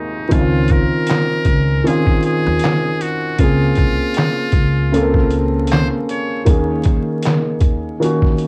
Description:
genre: lo-fi hip hop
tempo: 78 BPM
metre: 4/4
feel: swing 58% on 16ths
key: Db major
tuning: A4 = 442 Hz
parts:
  - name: trumpet with metal mute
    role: melody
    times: 0.0-6.5 s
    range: Eb4 to Db5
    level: -25 LUFS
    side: equal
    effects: low-pass filter
  - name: felt-muted upright piano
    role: accompaniment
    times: 0.0-8.5 s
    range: Eb2 to Bb4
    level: -20 LUFS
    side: equal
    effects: cassette tape, low-pass filter
  - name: upright bass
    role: bass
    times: 0.3-8.0 s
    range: C2 to Eb2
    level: -21 LUFS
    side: equal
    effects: transformer saturation
  - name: trip hop sampler-style drum kit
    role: drums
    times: 0.3-8.5 s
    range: handclaps, hi-hat, kick drum, snare drum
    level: -19 LUFS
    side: equal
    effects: none
room: light reverb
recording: worn, warbling old tape, cassette tape, vinyl crackle, warbly pitch drift, low-pass filter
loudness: -16 LUFS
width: mono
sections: 0.3-8.5 A section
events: none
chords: 0.3 Dbmaj9; 3.4 Bbm9; 6.5 Eb7sus4

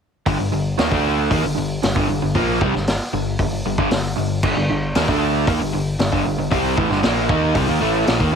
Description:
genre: classic rock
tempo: 115 BPM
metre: 4/4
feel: straight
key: G minor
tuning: A4 = 440 Hz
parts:
  - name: crunchy overdriven guitar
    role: riff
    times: 0.3-8.4 s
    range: G2 to Eb4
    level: -22 LUFS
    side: right 16 dB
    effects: none
  - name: overdriven semi-hollow guitar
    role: riff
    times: 0.3-8.3 s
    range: G2 to Eb4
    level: -22 LUFS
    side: left 9 dB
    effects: none
  - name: growling picked electric bass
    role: bass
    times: 0.3-8.4 s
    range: G1 to Eb2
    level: -25 LUFS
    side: equal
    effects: overdrive
  - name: vintage drum kit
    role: drums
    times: 0.3-8.3 s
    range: crash cymbal, hi-hat, kick drum, snare drum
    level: -22 LUFS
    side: equal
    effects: none
room: light reverb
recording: none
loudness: -17 LUFS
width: side -6 dB against mid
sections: 0.3-8.4 A section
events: none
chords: 0.3 Gm

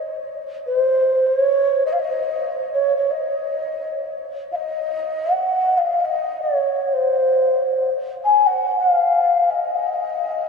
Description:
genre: indian classical, Hindustani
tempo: free time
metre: none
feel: none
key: Eb raga bageshri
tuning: A4 = 444 Hz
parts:
  - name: mellow hollow bansuri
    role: solo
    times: 0.0-10.5 s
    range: C5 to Ab5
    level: -18 LUFS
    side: left 1 dB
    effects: none
room: wet huge ambient reverb, RT60 7.8 s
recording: in a vast, echoing space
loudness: -17 LUFS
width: side -4 dB against mid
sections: 0.0-10.5 A section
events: none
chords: none

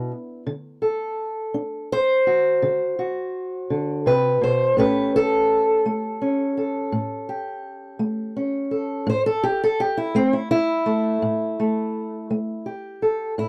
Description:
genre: acoustic country blues, solo or duo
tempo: 56 BPM (dotted quarters)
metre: 12/8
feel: straight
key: A mixolydian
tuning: A4 = 440 Hz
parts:
  - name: fingerpicked old ladder-braced acoustic guitar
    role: solo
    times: 0.0-13.5 s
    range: A2 to C5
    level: -23 LUFS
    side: equal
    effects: none
room: light reverb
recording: dry, close 1970s-style studio recording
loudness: -22 LUFS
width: mono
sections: 0.0-13.4 A section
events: steel-string acoustic guitar solo 0.0-13.4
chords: 0.5 D7; 4.8 A7

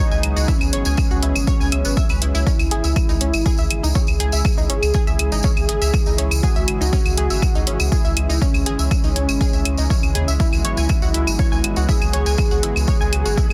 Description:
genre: melodic techno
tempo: 121 BPM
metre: 4/4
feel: straight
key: C# minor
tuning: A4 = 440 Hz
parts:
  - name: unison lead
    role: melody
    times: 0.0-13.5 s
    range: C#4 to G#4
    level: -28 LUFS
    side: equal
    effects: analog chorus, sidechain pumping, digital delay
  - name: lush unison pad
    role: sustained chords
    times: 0.0-13.5 s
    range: C#3 to G#4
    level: -32 LUFS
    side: equal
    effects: chorus, sidechain pumping
  - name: unison pluck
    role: arpeggios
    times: 0.0-13.4 s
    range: B3 to G#6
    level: -31 LUFS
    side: equal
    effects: cassette tape, sidechain pumping, digital delay
  - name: analog drone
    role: drone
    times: 0.2-13.5 s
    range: C#3 to G#3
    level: -37 LUFS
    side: equal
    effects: none
  - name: round analog bass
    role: bass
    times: 0.1-13.5 s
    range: G#1 to D#2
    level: -23 LUFS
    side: equal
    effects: sidechain pumping
  - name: tambourine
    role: percussion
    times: 0.1-13.5 s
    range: none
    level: -32 LUFS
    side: equal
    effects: none
  - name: electronic hi-hat and claves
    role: drums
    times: 0.2-13.5 s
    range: none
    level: -27 LUFS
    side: equal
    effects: overdrive
  - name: electronic kick drum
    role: drums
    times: 0.5-13.5 s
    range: none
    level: -22 LUFS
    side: equal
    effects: overdrive
room: digital ambience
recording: dense, heavily limited modern master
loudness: -18 LUFS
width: mono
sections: 0.0-13.5 A section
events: none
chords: 0.0 Eadd9; 2.5 C#m; 10.4 Eadd9

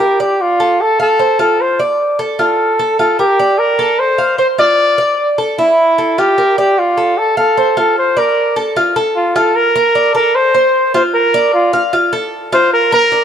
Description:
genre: latin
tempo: 151 BPM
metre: 4/4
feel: straight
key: F major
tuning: A4 = 440 Hz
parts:
  - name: warm trumpet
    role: melody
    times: 0.0-13.2 s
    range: E4 to D5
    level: -12 LUFS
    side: equal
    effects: none
  - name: Cuban tres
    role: arpeggios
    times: 0.0-13.2 s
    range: E4 to F5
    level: -15 LUFS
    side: right 1 dB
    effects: none
room: moderate plate reverb, RT60 3.2 s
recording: dark, warm production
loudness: -10 LUFS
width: side -8 dB against mid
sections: 0.0-8.8 A section; 8.8-13.2 B section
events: none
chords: 0.0 F69; 0.8 F; 1.6 F6; 2.4 F; 3.2 Gm; 4.0 F6; 5.6 Fmaj7; 6.4 F69; 7.2 F; 8.0 Bb; 8.8 F; 9.6 Fadd11; 10.3 F; 11.1 Bb; 11.9 F; 12.7 Fsus4

